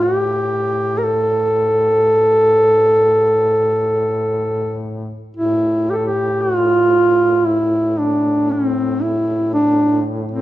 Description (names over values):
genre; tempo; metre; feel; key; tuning
caucasian folk, Caucasian lament; 57 BPM; 4/4; rubato; A minor; A4 = 440 Hz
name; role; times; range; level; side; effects
dark duduk; melody; 0.0-10.4 s; C4 to Bb4; -14 LUFS; equal; none
mellow duduk; drone; 0.0-10.4 s; A2; -25 LUFS; left 1 dB; none
room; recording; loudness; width
moderate recital hall reverb, RT60 1.4 s; minimal, uncompressed stereo recording, lossy compression artefacts; -14 LUFS; side -15 dB against mid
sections
0.0-5.3 A section; 5.3-10.4 B section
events
none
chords
none